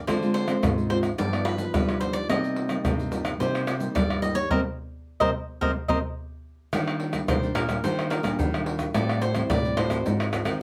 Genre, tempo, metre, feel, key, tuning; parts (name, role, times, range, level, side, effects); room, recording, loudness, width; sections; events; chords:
samba and choro; 108 BPM; 4/4; straight; C minor, Eb major from 6.7 s; A4 = 440 Hz
nylon-string guitar; accompaniment; 0.0-10.6 s; G2 to Bb4; -32 LUFS; equal
cavaquinho; melody; 0.1-10.0 s; Bb4 to Eb5; -32 LUFS; equal
nylon-string guitar; bass; 0.1-10.6 s; G2 to G3; -32 LUFS; equal
egg shaker, surdo, pandeiro and tamborim; percussion; 0.1-10.6 s; -31 LUFS; equal
moderate studio reverb, RT60 0.5 s; faint mains hum; -26 LUFS; mono
0.0-6.7 A section; 6.7-10.6 B section
band accent 4.5-6.7; cavaquinho solo 6.7-10.6
0.1 Dm7b5; 1.2 G7b13; 2.3 Cm7; 6.7 Ebmaj7; 8.9 Am7; 10.1 Ab9